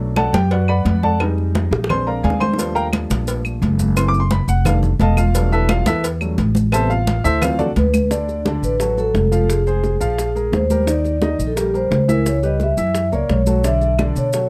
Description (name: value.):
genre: Afro-Cuban jazz.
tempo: 174 BPM.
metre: 4/4.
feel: straight.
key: unclear.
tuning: A4 = 440 Hz.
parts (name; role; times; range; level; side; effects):
warm upright piano; accompaniment; 0.0-14.5 s; C3 to D6; -24 LUFS; equal; none.
upright bass; bass; 0.0-14.5 s; E1 to B2; -21 LUFS; equal; none.
claves; percussion; 0.2-8.1, 14.0-14.2 s; none; -30 LUFS; equal; none.
congas; percussion; 0.2-14.5 s; none; -24 LUFS; equal; none.
cowbell and bongos; percussion; 0.2-14.5 s; none; -30 LUFS; equal; none.
maracas; percussion; 2.6-14.5 s; none; -36 LUFS; equal; none.
vibraphone with soft mallets; melody; 7.8-14.5 s; G4 to E5; -23 LUFS; equal; none.
room: little or no reverb.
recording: close, detailed microphones.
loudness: -18 LUFS.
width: mono.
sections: 0.0-8.1 A section; 8.1-14.5 B section.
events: upright piano solo 0.0-8.1; drum fill 1.7-2.6.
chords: 0.0 Bm7; 1.2 Fm7; 1.9 Bb7; 2.6 Ebmaj9#11; 4.0 F#m7b5; 4.7 F13; 5.3 Em11; 6.7 Am7; 7.4 D9; 8.1 D6; 9.5 Fm; 10.2 Bb5; 10.9 Eb6; 12.3 C#m7b5; 12.9 F#7; 13.6 Bm11.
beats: 0.17 0.51 0.86 | 1.20 1.55 1.89 2.24 | 2.58 2.93 3.28 3.62 | 3.97 4.31 4.66 5.00 | 5.35 5.69 6.04 6.38 | 6.73 7.07 7.42 7.76 | 8.11 8.46 8.80 9.15 | 9.49 9.84 10.18 10.53 | 10.87 11.22 11.56 11.91 | 12.26 12.60 12.95 13.29 | 13.64 13.98 14.33.